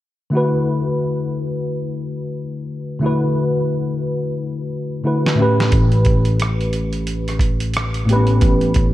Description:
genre	R&B, neo-soul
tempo	89 BPM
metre	4/4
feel	swing 59% on 16ths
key	D major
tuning	A4 = 440 Hz
part	tine electric piano	accompaniment	0.3-8.9 s	A2 to B4	-18 LUFS	left 1 dB	overdrive, ensemble chorus
part	dusty soul sampler-style drum kit	drums	5.3-8.9 s	hi-hat, kick drum, rim click, snare drum	-20 LUFS	right 1 dB	none
part	barky tine electric piano	bass	5.7-8.9 s	A1	-21 LUFS	equal	none
room	moderate plate reverb, RT60 2.5 s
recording	dreamy mix soaked in reverb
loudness	-16 LUFS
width	side -14 dB against mid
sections	0.3-8.9 A section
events	drum fill 4.4-5.7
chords	0.3 D6; 5.4 A7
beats	| 0.33 1.00 1.68 2.35 | 3.03 3.70 4.38 5.05 | 5.72 6.40 7.07 7.75 | 8.42

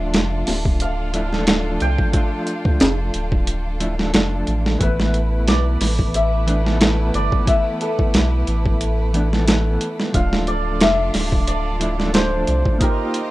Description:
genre	trip hop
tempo	90 BPM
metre	4/4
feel	swing 54% on 16ths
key	D dorian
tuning	A4 = 440 Hz
part	santur	melody	0.0-13.3 s	A4 to G5	-25 LUFS	left 1 dB	tape echo
part	mellow electric guitar	accompaniment	0.0-13.3 s	E3 to A4	-25 LUFS	equal	tremolo
part	clear studio violin section	sustained chords	0.0-13.3 s	A3 to Eb5	-30 LUFS	equal	plate reverb
part	warm sub bass	bass	0.0-12.6 s	D1 to C2	-21 LUFS	equal	none
part	boom bap sampler-style drum kit	drums	0.1-13.3 s	hi-hat, kick drum, snare drum	-18 LUFS	equal	overdrive, vintage 12-bit sampler grit
room	little or no reverb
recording	rough home demo mix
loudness	-16 LUFS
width	side -17 dB against mid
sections	0.0-13.3 A section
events	none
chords	0.0 Dm; 4.8 Asus2; 10.1 Dm; 12.8 Ebadd9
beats	0.14 0.81 1.47 | 2.14 2.81 3.47 4.14 | 4.81 5.47 6.14 6.81 | 7.47 8.14 8.81 9.47 | 10.14 10.81 11.47 12.14 | 12.81

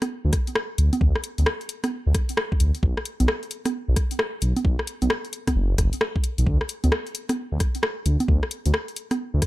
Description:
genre	UK garage, two-step garage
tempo	132 BPM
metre	4/4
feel	swing 64% on 16ths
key	B minor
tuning	A4 = 440 Hz
part	punchy analog drum machine	drums	0.0-9.5 s	congas, hi-hat, rim click	-26 LUFS	equal	overdrive, dub echo
part	dark detuned saw bass	bass	0.2-9.4 s	F#1 to D2	-20 LUFS	equal	none
part	electronic kick drum	drums	0.3-9.5 s	none	-23 LUFS	equal	overdrive
room	little or no reverb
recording	echo-heavy mix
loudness	-21 LUFS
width	side -17 dB against mid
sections	0.0-9.5 A section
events	none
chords	none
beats	0.10 0.56 | 1.01 1.47 1.92 2.38 | 2.83 3.28 3.74 4.19 | 4.65 5.10 5.56 6.01 | 6.47 6.92 7.38 7.83 | 8.28 8.74 9.19

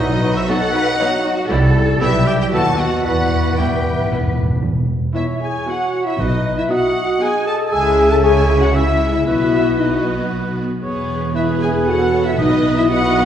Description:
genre	quick classical-period movement for symphony orchestra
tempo	116 BPM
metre	3/4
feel	straight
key	E minor, E major from 4.6 s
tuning	A4 = 439 Hz
part	rich studio violin section	melody	0.0-13.2 s	B4 to A5	-26 LUFS	left 3 dB	none
part	mellow clarinet	second line	0.0-13.2 s	D#4 to A4	-26 LUFS	equal	none
part	mellow cor anglais	second line	0.0-13.2 s	D#4 to E5	-25 LUFS	right 2 dB	none
part	mellow flute section	second line	0.0-13.2 s	B4 to A5	-25 LUFS	left 1 dB	none
part	warm bassoon	accompaniment	0.0-4.4 s	F#3 to B3	-26 LUFS	right 1 dB	none
part	mellow French horn section	sustained chords	0.0-13.2 s	F#3 to A4	-20 LUFS	left 2 dB	none
part	rich chamber double bass section	bass	0.0-13.2 s	E1 to E2	-20 LUFS	right 1 dB	none
part	warm studio cello section	bass	0.0-13.2 s	E2 to B4	-25 LUFS	right 1 dB	none
part	timpani	percussion	0.0-0.7, 3.1-6.9, 12.4-13.1 s	E2 to B2	-23 LUFS	equal	none
part	rich studio violin section	second line	0.5-13.2 s	B3 to A5	-26 LUFS	left 1 dB	none
part	rich symphonic viola section	accompaniment	0.5-13.2 s	E3 to B4	-25 LUFS	equal	none
room	wet scoring stage reverb, RT60 1.7 s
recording	heard from further back in the room, nothing above 10.5 kHz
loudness	-14 LUFS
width	side -9 dB against mid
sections	0.0-4.6 A section; 4.6-13.2 A section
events	timpani fill 3.1-4.6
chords	0.0 B; 1.5 C; 2.0 Em/B; 2.5 B7/D#; 3.1 Em; 4.6 E; 6.2 B; 7.7 C#m; 9.3 B; 10.8 E; 12.4 B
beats	0.49 0.99 | 1.50 2.01 2.53 | 3.05 3.58 4.11 | 4.63 5.16 5.67 | 6.19 6.71 7.22 | 7.72 8.23 8.75 | 9.27 9.79 10.31 | 10.83 11.35 11.87 | 12.38 12.90

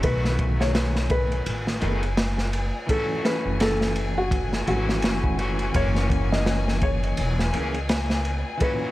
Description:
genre	trip hop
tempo	84 BPM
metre	4/4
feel	swing 58% on 16ths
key	F# dorian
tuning	A4 = 439 Hz
part	felt-muted upright piano	melody	0.0-8.9 s	F#4 to D#5	-29 LUFS	left 1 dB	tape echo
part	electric guitar at the edge of break-up	accompaniment	0.0-8.9 s	A#2 to G#4	-30 LUFS	left 1 dB	harmonic tremolo, tape echo
part	dark studio string section	sustained chords	0.0-8.9 s	G#5	-35 LUFS	left 3 dB	none
part	upright bass	bass	0.0-8.4 s	E1 to C#2	-26 LUFS	equal	none
part	crunchy breakbeat drum kit	drums	0.0-8.8 s	kick drum, ride cymbal, snare drum	-26 LUFS	equal	none
room	light reverb, small room ambience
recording	echo-heavy mix, vinyl crackle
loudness	-21 LUFS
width	side -16 dB against mid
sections	0.0-8.9 A section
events	none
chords	0.0 B7; 2.9 F#m7; 5.7 F#7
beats	| 0.03 0.75 1.46 2.18 | 2.89 3.60 4.32 5.03 | 5.75 6.46 7.18 7.89 | 8.61

